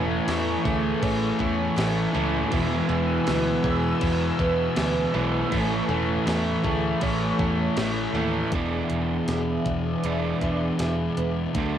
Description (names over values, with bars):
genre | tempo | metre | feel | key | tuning
rock, shoegaze and dream pop | 80 BPM | 4/4 | straight | E mixolydian | A4 = 444 Hz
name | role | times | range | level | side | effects
chorused pulse-width pad | sustained chords | 0.0-11.8 s | A3 to E6 | -32 LUFS | equal | phaser
picked twelve-string acoustic guitar | arpeggios | 0.0-11.8 s | E3 to G#4 | -32 LUFS | right 4 dB | lush chorus, tape echo
distorted electric guitar | riff | 0.0-8.5 s | E2 to A3 | -30 LUFS | equal | distortion
overdriven semi-hollow guitar | riff | 0.0-11.8 s | A2 to D5 | -29 LUFS | right 6 dB | reverse reverb
thick fuzz guitar | riff | 0.0-11.8 s | E2 to D4 | -28 LUFS | left 8 dB | distortion, lush chorus
vintage muted picked electric bass | bass | 0.0-11.8 s | E1 to E2 | -30 LUFS | equal | none
crisp 8-bit digital drum machine | drums | 0.3-11.7 s | crash cymbal, hi-hat, kick drum, snare drum | -32 LUFS | equal | none
room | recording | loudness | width
light reverb | home recording on cassette | -22 LUFS | side -10 dB against mid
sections
0.0-8.5 A section; 8.5-11.8 B section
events
none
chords
0.0 Amaj7; 2.5 E; 5.5 Amaj7; 8.5 E7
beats
0.28 1.03 1.78 | 2.53 3.27 4.03 4.77 | 5.52 6.28 7.03 7.78 | 8.53 9.29 10.04 10.80 | 11.55